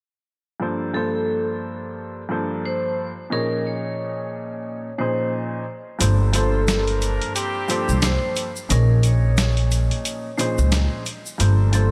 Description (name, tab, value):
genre	hip hop, boom-bap hip-hop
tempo	89 BPM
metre	4/4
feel	swing 58% on 16ths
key	G minor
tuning	A4 = 440 Hz
part	dark upright piano	accompaniment	0.6-11.9 s	G2 to Db5	-28 LUFS	equal	cassette tape, high-pass filter, low-pass filter
part	vibraphone with hard mallets	melody	0.9-11.9 s	A4 to Db5	-31 LUFS	equal	high-pass filter, low-pass filter
part	upright bass	bass	6.0-11.9 s	G1 to Db2	-20 LUFS	equal	none
part	dusty soul sampler-style drum kit	drums	6.0-11.9 s	hi-hat, snare drum	-27 LUFS	equal	none
part	tube shaker	percussion	6.0-11.9 s	none	-39 LUFS	equal	none
part	mellow trumpet section	stabs	6.3-11.9 s	A3 to C5	-31 LUFS	equal	high-pass filter, low-pass filter, tape echo
room	light reverb, small room reverb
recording	none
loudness	-22 LUFS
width	mono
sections	0.6-6.0 A section; 6.0-11.9 B section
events	kick muted 6.0-11.9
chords	0.6 Gm11; 3.3 Bbm11; 6.0 Gm11; 8.7 Bbm11; 11.4 Gm11